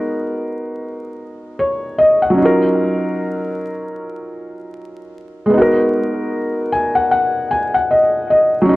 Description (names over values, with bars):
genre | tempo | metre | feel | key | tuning
hip hop | 76 BPM | 4/4 | swing 60% on 16ths | unclear | A4 = 440 Hz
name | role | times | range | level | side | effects
felt-muted upright piano | solo | 0.0-8.8 s | Gb3 to Ab5 | -15 LUFS | equal | low-pass filter, analog delay
room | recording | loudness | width
wet studio reverb, RT60 0.5 s | worn, warbling old tape, cassette tape, vinyl crackle, warbly pitch drift | -14 LUFS | side -18 dB against mid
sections
0.0-8.8 A section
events
felt piano fill 6.3-8.7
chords
0.0 Abm9; 2.4 Ebm9; 5.5 Abm9